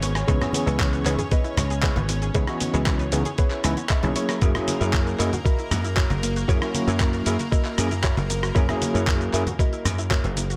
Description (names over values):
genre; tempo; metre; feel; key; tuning
nu-disco, nu disco; 116 BPM; 4/4; straight; unclear; A4 = 440 Hz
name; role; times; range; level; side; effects
lush unison pad; sustained chords; 0.0-10.6 s; A#3 to C#5; -36 LUFS; equal; chorus, sidechain pumping
unison pluck; arpeggios; 0.0-10.6 s; A#3 to E5; -37 LUFS; equal; none
direct-recorded clean electric guitar; riff; 0.0-10.4 s; E4 to G#5; -34 LUFS; equal; lush chorus, tape echo
dry thumbed slap bass; bass; 0.0-10.6 s; F#1 to F#2; -28 LUFS; equal; tube saturation
dusty soul sampler-style drum kit; drums; 0.0-10.6 s; handclaps, hi-hat, rim click, shaker; -32 LUFS; equal; none
congas; percussion; 0.0-10.5 s; none; -35 LUFS; equal; none
overdriven tine electric piano; accompaniment; 0.3-9.4 s; E3 to D#5; -31 LUFS; equal; medium tremolo, sidechain pumping, tape echo
electronic kick drum; drums; 0.3-10.2 s; none; -24 LUFS; equal; none
room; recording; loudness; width
light reverb; echo-heavy mix; -23 LUFS; mono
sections
0.0-10.6 A section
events
clean electric guitar fill 0.0, 3.4-4.4, 7.8-8.6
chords
0.0 C#m7; 4.2 F#7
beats
| 0.28 0.80 1.32 1.83 | 2.35 2.87 3.39 3.90 | 4.42 4.94 5.46 5.97 | 6.49 7.01 7.53 8.04 | 8.56 9.08 9.59 10.11